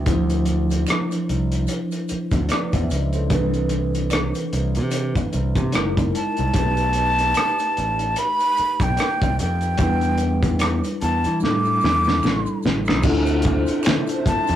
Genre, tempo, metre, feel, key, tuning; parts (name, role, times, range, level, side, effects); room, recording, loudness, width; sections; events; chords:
R&B, neo-soul; 74 BPM; 4/4; swing 58% on 16ths; D dorian; A4 = 439 Hz
mellow tine electric piano; accompaniment; 0.0-14.6 s; E3 to E5; -25 LUFS; equal; medium stereo tremolo
modern bright fingered electric bass; bass; 0.0-14.6 s; F#1 to E3; -23 LUFS; equal
cloth-damped thuddy drum kit; drums; 0.1-14.6 s; crash cymbal, finger snaps, hi-hat, kick drum, rim click, snare drum; -23 LUFS; equal
maracas and finger snaps; percussion; 0.1-14.6 s; -41 LUFS; right 4 dB
breathy jazz flute; melody; 6.2-14.6 s; G5 to D6; -21 LUFS; equal
hollow soft pad; sustained chords; 13.0-14.6 s; D4 to E5; -28 LUFS; equal; ensemble chorus
moderate small room reverb, RT60 0.6 s; rough rehearsal-room recording, warm saturation; -18 LUFS; side -11 dB against mid
0.0-13.0 A section; 13.0-14.6 B section
drum fill 11.4-13.0
0.1 Dm9; 3.3 Cmaj9; 5.7 F#13; 6.5 Baug7; 9.8 Em7; 11.4 A7sus4; 13.0 Dm9